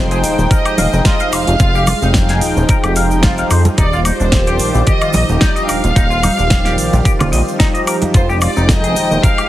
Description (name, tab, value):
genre	nu-disco, nu disco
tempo	110 BPM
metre	4/4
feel	swing 54% on 16ths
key	F dorian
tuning	A4 = 441 Hz
part	clear chamber violin section	melody	0.0-9.5 s	C5 to G5	-20 LUFS	right 1 dB	analog delay
part	warm analog pad	accompaniment	0.0-9.5 s	Eb3 to G5	-20 LUFS	equal	chorus, sidechain pumping
part	string machine, full ensemble	sustained chords	0.0-9.5 s	G3 to D6	-25 LUFS	equal	phaser, ensemble chorus, sidechain pumping
part	chorused synth bass	bass	0.0-9.2 s	Eb1 to F2	-15 LUFS	equal	none
part	clean electric guitar	riff	0.1-9.4 s	D4 to F5	-23 LUFS	left 2 dB	analog chorus
part	pop drum kit	drums	0.1-9.5 s	hi-hat, shaker, snare drum, woodblock	-20 LUFS	left 1 dB	small room ambience
part	tube shaker and congas	percussion	0.1-9.5 s	none	-23 LUFS	right 2 dB	none
part	electronic kick drum	drums	0.5-9.4 s	none	-14 LUFS	equal	small room ambience
room	light reverb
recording	heavily compressed radio sound, multiband compression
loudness	-11 LUFS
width	side -14 dB against mid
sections	0.0-9.5 A section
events	none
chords	0.0 Fm9; 3.8 Ebmaj9; 8.1 Fm9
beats	0.51 1.05 | 1.60 2.15 2.69 3.24 | 3.78 4.33 4.87 5.42 | 5.96 6.51 7.05 7.60 | 8.15 8.69 9.24